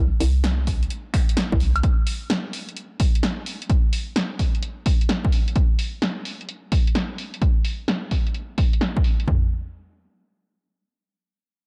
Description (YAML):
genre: UK garage, two-step garage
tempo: 129 BPM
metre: 4/4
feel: swing 66% on 16ths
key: unclear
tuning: A4 = 440 Hz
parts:
  - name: hollow knocking FM bass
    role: bass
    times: 0.0-1.8 s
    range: C2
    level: -23 LUFS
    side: equal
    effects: sidechain pumping
  - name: punchy analog drum machine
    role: drums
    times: 0.2-9.3 s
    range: finger snaps, hi-hat, snare drum, woodblock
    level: -29 LUFS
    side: equal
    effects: low-pass filter on hats, low-pass filter on snare, low-pass filter on perc, low-pass filter on room
  - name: punchy analog drum machine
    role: drums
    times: 0.7-9.4 s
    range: kick drum, toms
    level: -22 LUFS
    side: equal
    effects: none
room: little or no reverb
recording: dark, warm production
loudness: -22 LUFS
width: mono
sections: 0.0-9.3 A section; 9.3-11.7 B section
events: none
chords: none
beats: 0.44 0.90 1.37 | 1.83 2.30 2.76 3.23 | 3.69 4.16 4.62 5.09 | 5.55 6.02 6.48 6.95 | 7.41 7.88 8.35 8.81 | 9.28